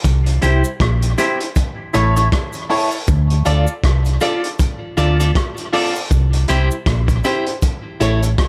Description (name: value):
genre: roots reggae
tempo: 79 BPM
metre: 4/4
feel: swing 58% on 16ths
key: D minor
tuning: A4 = 440 Hz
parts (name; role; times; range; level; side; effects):
- crunchy breakbeat drum kit; drums; 0.0-8.5 s; hi-hat, kick drum, rim click; -22 LUFS; equal; none
- cabasa; percussion; 0.0-8.4 s; none; -37 LUFS; equal; none
- hollow-body short-scale fingered electric bass; bass; 0.1-8.3 s; A1 to D2; -18 LUFS; equal; none
- electric guitar at the edge of break-up; accompaniment; 0.4-8.2 s; E4 to D5; -24 LUFS; equal; phaser, tape echo
- bright upright piano; stabs; 0.4-8.3 s; E4 to D5; -26 LUFS; equal; none
room: studio reverb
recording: none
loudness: -17 LUFS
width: mono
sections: 0.0-8.5 A section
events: none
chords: 0.0 C; 1.6 A; 3.1 Dm; 6.1 C; 7.6 A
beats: | 0.04 0.80 1.56 2.32 | 3.08 3.83 4.59 5.35 | 6.11 6.87 7.62 8.38